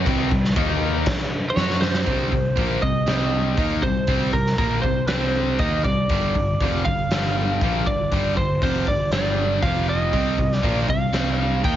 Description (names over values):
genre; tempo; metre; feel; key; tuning
hard rock; 119 BPM; 4/4; straight; C minor; A4 = 437 Hz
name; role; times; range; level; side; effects
distorted electric guitar; riff; 0.0-11.8 s; F2 to F#4; -26 LUFS; left 9 dB; distortion
overdriven semi-hollow guitar; riff; 0.0-11.8 s; F2 to F#4; -26 LUFS; right 8 dB; none
picked electric bass; bass; 0.0-11.8 s; F1 to F#2; -26 LUFS; equal; none
raw garage drum kit; drums; 0.1-11.8 s; crash cymbal, hi-hat, kick drum, snare drum; -25 LUFS; equal; none
lightly driven lead guitar; melody; 1.5-11.8 s; Bb4 to G5; -25 LUFS; right 1 dB; none
room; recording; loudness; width
light reverb, small room ambience; heavily compressed radio sound, nothing above 7.5 kHz; -19 LUFS; side -11 dB against mid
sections
0.0-2.1 A section; 2.1-11.8 B section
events
drum fill 1.6-2.1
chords
0.1 C5; 0.6 Eb5; 1.6 F#5; 2.1 Cm; 6.1 G5; 9.6 F5; 10.1 Cm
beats
| 0.07 0.57 1.07 1.57 | 2.07 2.58 3.08 3.58 | 4.08 4.59 5.09 5.59 | 6.10 6.60 7.11 7.61 | 8.12 8.62 9.12 9.63 | 10.13 10.64 11.14 11.64